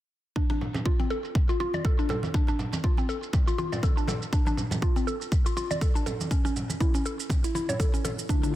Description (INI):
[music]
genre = afro house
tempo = 121 BPM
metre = 4/4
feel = swing 56% on 16ths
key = D minor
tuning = A4 = 440 Hz
[part]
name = mallet-like synth pluck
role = arpeggios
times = 0.4-8.5 s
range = C4 to D5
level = -31 LUFS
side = left 1 dB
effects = chorus, phaser, sidechain pumping, digital delay
[part]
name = electronic kick drum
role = drums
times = 0.4-8.4 s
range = none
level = -25 LUFS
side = equal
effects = none
[part]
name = shaker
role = drums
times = 0.4-8.5 s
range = none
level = -40 LUFS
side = right 5 dB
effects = overdrive, low-pass filter on perc, low-pass filter on room
[part]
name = congas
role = percussion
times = 0.5-8.5 s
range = none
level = -34 LUFS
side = right 2 dB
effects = none
[part]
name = warm analog pad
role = sustained chords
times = 8.3-8.6 s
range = D3 to F4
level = -30 LUFS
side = left 3 dB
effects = chorus, sidechain pumping
[sound]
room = light reverb, digital ambience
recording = dense, heavily limited modern master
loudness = -24 LUFS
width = side -14 dB against mid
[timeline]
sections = 0.4-8.6 A section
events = none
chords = 0.4 Dm; 6.3 A